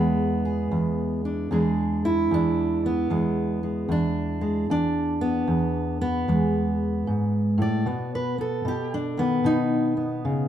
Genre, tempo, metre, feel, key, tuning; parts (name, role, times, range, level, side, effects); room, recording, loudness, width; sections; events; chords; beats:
acoustic country blues, solo or duo; 76 BPM; 4/4; swing 65% on 8ths; E mixolydian; A4 = 441 Hz
fingerpicked steel-string acoustic guitar; solo; 0.0-10.5 s; E2 to D5; -22 LUFS; equal
moderate large studio reverb, RT60 0.9 s; band playing live in one room; -22 LUFS; side -10 dB against mid
0.0-10.5 A section
0.0 E7; 7.9 B7
0.73 | 1.52 2.31 3.11 3.90 | 4.69 5.48 6.27 7.07 | 7.86 8.65 9.44 10.23